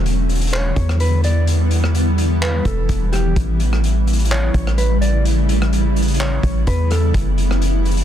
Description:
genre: hip hop, atmospheric cloud-rap.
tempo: 127 BPM.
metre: 4/4.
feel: half-time.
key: unclear.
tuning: A4 = 439 Hz.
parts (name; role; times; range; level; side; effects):
granular cloud pad; sustained chords; 0.0-8.0 s; C#3 to E4; -21 LUFS; equal; built-in reverb, sidechain pumping.
warm 808-style bass; bass; 0.0-8.0 s; E1 to E2; -17 LUFS; equal; none.
vintage drum kit; drums; 0.1-8.0 s; handclaps, hi-hat, kick drum, rim click; -24 LUFS; equal; none.
mellow electric guitar; melody; 0.5-7.1 s; G4 to D5; -27 LUFS; equal; low-pass filter, tape echo.
room: studio reverb.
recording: dense, heavily limited modern master.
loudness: -15 LUFS.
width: side -10 dB against mid.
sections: 0.0-8.0 A section.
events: none.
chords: 0.0 Em7; 3.4 A7; 7.1 F#m7.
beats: 0.06 0.53 1.00 | 1.47 1.95 2.42 2.89 | 3.36 3.84 4.31 4.78 | 5.25 5.73 6.20 6.67 | 7.14 7.62.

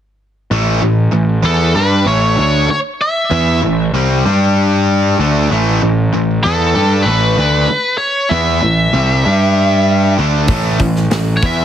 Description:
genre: hard rock.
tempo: 96 BPM.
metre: 4/4.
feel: straight.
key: unclear.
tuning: A4 = 442 Hz.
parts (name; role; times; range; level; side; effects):
distorted electric guitar; riff; 0.5-11.6 s; A2 to G4; -16 LUFS; equal; overdrive.
fuzz picked electric bass; bass; 0.5-11.6 s; A1 to G2; -14 LUFS; equal; overdrive.
biting lead guitar; melody; 1.5-11.6 s; A4 to E5; -16 LUFS; equal; overdrive, tape echo.
big rock drum kit; drums; 10.5-11.6 s; hi-hat, kick drum, snare drum; -17 LUFS; equal; none.
room: light reverb.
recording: heavily compressed radio sound, faint mains hum.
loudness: -11 LUFS.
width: side -10 dB against mid.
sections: 0.5-11.6 A section.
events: none.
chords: 0.5 A5; 4.2 G5; 5.2 A5; 9.2 G5; 10.2 A5.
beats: | 0.51 1.13 1.76 2.38 | 3.00 3.62 4.25 4.87 | 5.49 6.12 6.74 7.37 | 7.99 8.62 9.24 9.87 | 10.50 11.12.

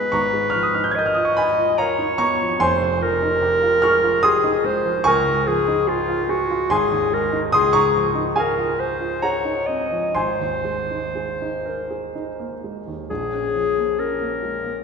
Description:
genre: classical, impressionist duo for clarinet and grand piano.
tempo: 60-75 BPM.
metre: 3/4.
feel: rubato.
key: Bb minor.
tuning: A4 = 440 Hz.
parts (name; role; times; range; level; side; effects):
warm clarinet; melody; 0.0-14.8 s; F4 to D#5; -20 LUFS; left 2 dB; none.
warm grand piano; accompaniment; 0.0-14.8 s; F1 to G#6; -21 LUFS; right 2 dB; none.
room: wet church reverb, RT60 3.2 s.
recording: recorded in a church or concert hall.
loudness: -18 LUFS.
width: side -5 dB against mid.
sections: 0.0-13.1 A section; 13.1-14.8 B section.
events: none.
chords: 0.1 C#13/G#; 2.6 Fm9; 5.1 Dbadd9; 6.7 Abadd9; 7.5 Dbmaj9; 10.2 Abadd9; 13.1 Bbm.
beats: | 0.12 0.95 1.79 | 2.61 3.42 4.23 | 5.05 5.88 6.71 | 7.54 8.38 9.23 | 10.16 11.16 12.14 | 13.09 13.98.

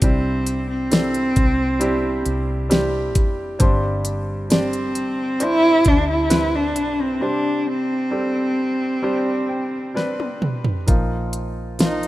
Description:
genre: pop ballad.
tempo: 66 BPM.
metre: 4/4.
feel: straight.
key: C major.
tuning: A4 = 440 Hz.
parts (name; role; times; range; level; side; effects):
warm cello; melody; 0.0-12.1 s; C4 to E4; -20 LUFS; equal; none.
warm grand piano; accompaniment; 0.0-12.1 s; G2 to G5; -25 LUFS; right 1 dB; none.
vintage muted fingered electric bass; bass; 0.0-12.1 s; F1 to D2; -26 LUFS; equal; none.
pop drum kit; drums; 0.0-12.1 s; hi-hat, kick drum, snare drum, toms; -19 LUFS; equal; none.
room: light reverb.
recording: rough home demo mix.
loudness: -18 LUFS.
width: side -16 dB against mid.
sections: 0.0-10.9 A section; 10.9-12.1 A section.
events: break 7.2-10.9; grand piano fill 9.0-10.9; drum fill 10.0-10.9.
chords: 0.0 Cadd9; 3.6 Gsus4; 7.2 Csus2; 10.9 Bbsus4.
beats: | 0.02 0.92 1.81 2.71 | 3.61 4.51 5.41 6.32 | 7.22 8.12 9.04 9.96 | 10.89 11.80.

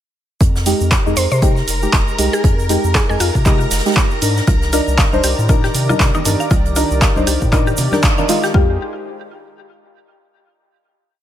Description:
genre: deep house.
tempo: 118 BPM.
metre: 4/4.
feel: swing 58% on 16ths.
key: F minor.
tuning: A4 = 440 Hz.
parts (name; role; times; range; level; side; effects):
round analog bass; bass; 0.4-8.8 s; F1 to C3; -19 LUFS; equal; sidechain pumping.
electronic kick drum; drums; 0.4-8.7 s; none; -15 LUFS; equal; none.
natural country drum kit; drums; 0.4-8.5 s; hi-hat, snare drum; -29 LUFS; right 2 dB; high-pass filter on hats, high-pass filter on snare, high-pass filter on room.
tube shaker; percussion; 0.4-8.5 s; none; -28 LUFS; right 3 dB; none.
string machine, violins; texture; 0.4-8.6 s; Bb4 to Bb5; -27 LUFS; left 1 dB; ensemble chorus, sidechain pumping.
deep mellow chord stab; stabs; 0.7-8.8 s; Ab3 to C5; -20 LUFS; equal; chorus, sidechain pumping, dub echo.
punchy analog drum machine; drums; 0.7-8.4 s; handclaps, hi-hat; -21 LUFS; right 1 dB; none.
mallet-like synth pluck; melody; 1.2-3.7 s; F4 to C5; -23 LUFS; left 1 dB; chorus, ping-pong delay.
warm analog pad; sustained chords; 4.5-8.8 s; Eb3 to D5; -26 LUFS; right 1 dB; chorus, sidechain pumping.
mallet-like synth pluck; arpeggios; 4.5-8.8 s; Eb4 to F5; -25 LUFS; left 3 dB; chorus, sidechain pumping, ping-pong delay.
congas; percussion; 4.5-8.3 s; none; -26 LUFS; right 2 dB; none.
room: light reverb, small room ambience.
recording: none.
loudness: -13 LUFS.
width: side -11 dB against mid.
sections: 0.4-8.5 drop; 8.5-10.6 final chord.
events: drop 0.4-8.5; band accent 8.0.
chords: 0.4 Fm9; 4.5 Cm9; 8.5 Fm9.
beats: | 0.41 0.92 1.42 1.93 | 2.44 2.95 3.46 3.97 | 4.47 4.98 5.49 6.00 | 6.51 7.02 7.53 8.03 | 8.54.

